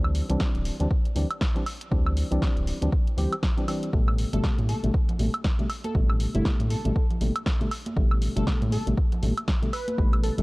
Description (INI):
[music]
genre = deep house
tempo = 119 BPM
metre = 4/4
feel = swing 58% on 16ths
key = unclear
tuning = A4 = 440 Hz
[part]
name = percussive organ stab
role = stabs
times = 0.0-10.4 s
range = B2 to G4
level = -30 LUFS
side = equal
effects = chorus, sidechain pumping, analog delay
[part]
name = round analog bass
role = bass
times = 0.0-10.4 s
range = D1 to A2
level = -25 LUFS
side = equal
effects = sidechain pumping
[part]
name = punchy analog drum machine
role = drums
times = 0.0-10.4 s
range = hi-hat, snare drum, woodblock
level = -33 LUFS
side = equal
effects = none
[part]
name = electronic kick drum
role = drums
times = 0.4-10.1 s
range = none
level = -25 LUFS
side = equal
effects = none
[part]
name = plucky unison lead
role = melody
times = 4.3-10.4 s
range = E4 to B4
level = -36 LUFS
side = equal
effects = wide subtle chorus, analog delay
[part]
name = congas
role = percussion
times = 4.6-10.0 s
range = none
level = -35 LUFS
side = right 2 dB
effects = none
[sound]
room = little or no reverb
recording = dry, gritty hardware recording, transformer saturation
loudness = -23 LUFS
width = side -23 dB against mid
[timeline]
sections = 0.0-10.4 A section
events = none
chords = 0.0 D9sus4; 3.9 A9sus4